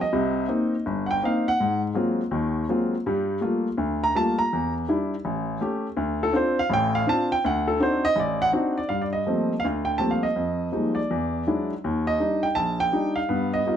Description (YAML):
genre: solo jazz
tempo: 164 BPM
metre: 4/4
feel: swing 66% on 8ths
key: G minor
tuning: A4 = 442 Hz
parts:
  - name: warm grand piano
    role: solo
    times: 0.0-13.8 s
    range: G1 to Bb5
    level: -22 LUFS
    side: equal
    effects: none
room: moderate club reverb, RT60 0.8 s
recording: none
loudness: -22 LUFS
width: side -9 dB against mid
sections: 0.0-8.9 A section; 8.9-13.8 B section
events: grand piano solo 0.0-8.9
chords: 0.1 Cm7; 1.6 Ab13; 3.0 Gm9; 4.5 Em7b5; 5.2 A7; 6.0 Dm7; 7.4 D7b9; 8.9 Gm11; 10.4 Fm11; 11.1 E9; 11.8 Ebmaj7